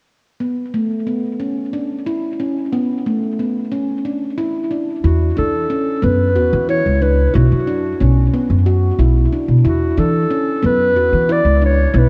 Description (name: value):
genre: contemporary instrumental, contemporary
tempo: 182 BPM (eighths)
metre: 7/8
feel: straight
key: unclear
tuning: A4 = 439 Hz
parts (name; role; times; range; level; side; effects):
- handpan; arpeggios; 0.4-12.1 s; A3 to F#4; -22 LUFS; equal; dub echo
- dark clarinet; melody; 5.0-12.1 s; F#4 to D5; -20 LUFS; equal; dub echo
- upright bass; bass; 5.0-12.1 s; B1 to E3; -17 LUFS; equal; none
room: light reverb, studio reverb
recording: echo-heavy mix, cassette tape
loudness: -17 LUFS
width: mono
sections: 0.4-5.0 A section; 5.0-12.1 B section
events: none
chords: 0.4 E5; 5.0 Esus2; 7.3 Bm; 9.7 Esus2